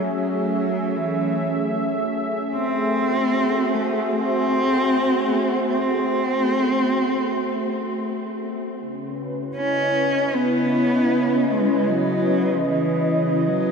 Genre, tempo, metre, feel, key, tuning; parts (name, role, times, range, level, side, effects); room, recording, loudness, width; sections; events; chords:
ambient; 77 BPM; 4/4; straight; C# minor; A4 = 442 Hz
rich cello; melody; 0.0-13.7 s; E3 to C#4; -22 LUFS; equal; ping-pong delay
warm analog pad; sustained chords; 0.0-13.7 s; C#3 to E5; -22 LUFS; equal; chorus
wet huge ambient reverb, RT60 8.0 s; -19 LUFS; side -5 dB against mid
0.0-8.8 A section; 8.8-13.7 B section
0.0 F#m9; 2.5 G#7b9b13; 8.8 C#m9